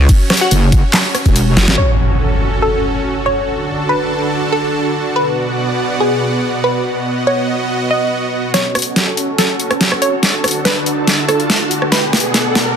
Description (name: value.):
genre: heavy wobble dubstep.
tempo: 142 BPM.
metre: 4/4.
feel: half-time.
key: F# minor.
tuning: A4 = 441 Hz.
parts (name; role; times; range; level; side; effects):
supersaw pad; sustained chords; 0.0-12.8 s; B2 to A5; -18 LUFS; right 2 dB; sidechain pumping, low-pass filter.
vowel-sweep wobble bass; bass; 0.0-1.7 s; F#1; -10 LUFS; equal; chorus, overdrive.
dubstep drum kit; drums; 0.1-1.9, 8.5-12.6 s; crash cymbal, handclaps, hi-hat, ride cymbal, rim click, snare drum; -14 LUFS; equal; overdrive, low-pass filter on hats, small room ambience, low-pass filter on cymbals, low-pass filter on snare.
electronic kick drum; drums; 0.1-1.3 s; none; -11 LUFS; equal; overdrive, small room ambience.
supersaw stab; stabs; 0.4-0.5 s; F#4 to F#5; -19 LUFS; left 3 dB; dub echo.
wobble bass; bass; 0.5-1.8 s; E1 to G#1; -12 LUFS; equal; chorus, overdrive.
wide unison pluck; melody; 1.8-12.7 s; G#4 to D#5; -19 LUFS; equal; dub echo.
impact and riser; sound effects; 1.8-3.5, 9.6-12.8 s; none; -20 LUFS; equal; none.
room: moderate lush hall reverb, RT60 1.7 s, digital ambience.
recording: dense, heavily limited modern master, high-pass filter.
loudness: -12 LUFS.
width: side -8 dB against mid.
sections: 0.0-1.8 A section; 1.8-8.5 B section; 8.5-12.8 C section.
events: drop 0.0-1.8; drum fill 1.6, 8.5-12.8; impact 1.8-3.5; build-up 8.5-12.8; filter sweep on supersaw synth 8.5-12.8; riser 9.6-12.8.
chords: 0.0 F#5; 1.8 F#m; 3.5 D; 5.2 Bm; 6.8 B; 8.5 F#m; 10.2 D; 11.9 Bm.